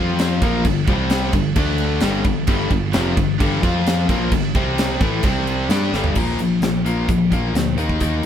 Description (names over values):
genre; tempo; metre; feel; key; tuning
hard rock; 130 BPM; 4/4; straight; unclear; A4 = 441 Hz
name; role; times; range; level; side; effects
biting overdriven guitar; riff; 0.0-6.2 s; F2 to G4; -24 LUFS; equal; none
cranked stack guitar; riff; 0.0-8.3 s; F2 to G4; -22 LUFS; left 7 dB; overdrive
heavy high-gain guitar; riff; 0.0-8.2 s; F2 to G4; -26 LUFS; right 6 dB; distortion
picked electric bass; bass; 0.0-8.2 s; F1 to G2; -23 LUFS; equal; none
tight metal drum kit; drums; 0.2-8.3 s; crash cymbal, hi-hat, kick drum, snare drum, toms; -21 LUFS; right 1 dB; none
room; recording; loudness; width
moderate studio reverb, RT60 0.6 s; band playing live in one room; -16 LUFS; side -9 dB against mid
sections
0.0-6.2 A section; 6.2-8.3 B section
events
drum fill 5.9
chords
0.4 Gm; 0.9 C5; 1.3 G5; 1.6 D5; 2.0 G5; 3.6 F5; 4.1 Gm; 4.6 C5; 5.0 A5; 5.2 C5; 5.7 G5; 6.2 Bb